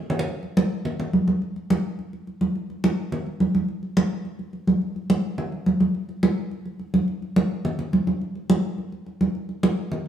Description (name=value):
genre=latin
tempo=212 BPM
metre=4/4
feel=straight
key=none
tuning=none
part: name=congas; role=percussion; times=0.1-10.1 s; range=none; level=-22 LUFS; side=right 1 dB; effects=none
room=wet stone room reverb, RT60 1.2 s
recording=band playing live in one room, studio reverb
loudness=-22 LUFS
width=side -9 dB against mid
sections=0.3-10.1 A section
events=drum fill 0.0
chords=none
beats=0.00 | 0.28 0.57 0.85 1.14 | 1.42 1.70 1.99 2.27 | 2.55 2.83 3.12 3.40 | 3.68 3.97 4.25 4.53 | 4.82 5.10 5.38 5.67 | 5.95 6.23 6.51 6.80 | 7.08 7.37 7.65 7.93 | 8.21 8.50 8.78 9.06 | 9.35 9.63 9.91